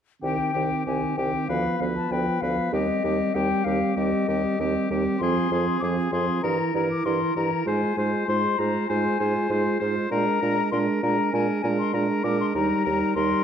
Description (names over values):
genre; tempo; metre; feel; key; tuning
quick classical-period movement for wind quintet; 98 BPM; 4/4; straight; C minor; A4 = 440 Hz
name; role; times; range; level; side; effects
concert flute; melody; 0.2-13.4 s; Eb5 to D6; -28 LUFS; left 8 dB; none
bright oboe; second line; 0.2-13.4 s; G4 to C5; -31 LUFS; left 3 dB; none
mellow French horn; accompaniment; 0.2-13.4 s; Eb3 to Ab3; -28 LUFS; equal; none
warm clarinet; accompaniment; 0.2-13.4 s; B3 to F4; -28 LUFS; right 6 dB; none
mellow bassoon; bass; 0.2-13.3 s; C2 to Bb2; -28 LUFS; right 2 dB; none
room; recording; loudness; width
wet recital hall reverb, RT60 1.3 s; dark, warm production; -22 LUFS; side -8 dB against mid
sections
0.2-13.4 A section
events
none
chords
0.2 Cm; 1.5 Bdim/D; 2.7 Cm/Eb; 5.2 Fm; 6.4 Edim/G; 7.7 Fm/Ab; 10.1 Bb7; 12.5 Eb